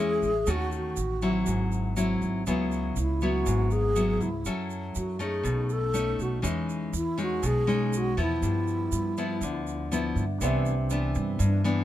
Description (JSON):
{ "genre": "bossa nova", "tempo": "121 BPM", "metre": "4/4", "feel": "straight", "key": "unclear", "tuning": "A4 = 440 Hz", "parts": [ { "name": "breathy mellow wooden-headed alto flute", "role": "melody", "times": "0.0-11.8 s", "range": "G3 to A4", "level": "-30 LUFS", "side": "equal", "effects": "none" }, { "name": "nylon-string guitar", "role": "accompaniment", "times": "0.0-11.8 s", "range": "G2 to A4", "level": "-28 LUFS", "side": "left 2 dB", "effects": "none" }, { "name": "upright bass", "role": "bass", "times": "0.0-11.8 s", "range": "G#1 to G2", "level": "-30 LUFS", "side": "right 1 dB", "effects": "none" }, { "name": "tube shaker", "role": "percussion", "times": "0.2-11.8 s", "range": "none", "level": "-41 LUFS", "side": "right 9 dB", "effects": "none" }, { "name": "warm grand piano", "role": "accompaniment", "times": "10.4-11.8 s", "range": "C4 to E5", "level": "-34 LUFS", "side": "right 5 dB", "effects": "none" } ], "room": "little or no reverb", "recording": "close, detailed microphones", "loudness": "-25 LUFS", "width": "side -13 dB against mid", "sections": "0.0-10.4 A section; 10.4-11.8 B section", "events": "none", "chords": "0.5 D#m7b5; 1.5 G#aug7; 2.5 C#m7; 4.5 F#m7; 5.4 B9; 6.4 E6; 8.4 G6; 10.4 Cmaj9", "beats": "| 0.48 0.97 1.47 1.97 | 2.46 2.96 3.46 3.95 | 4.45 4.95 5.44 5.94 | 6.44 6.93 7.43 7.93 | 8.43 8.92 9.42 9.91 | 10.41 10.91 11.40" }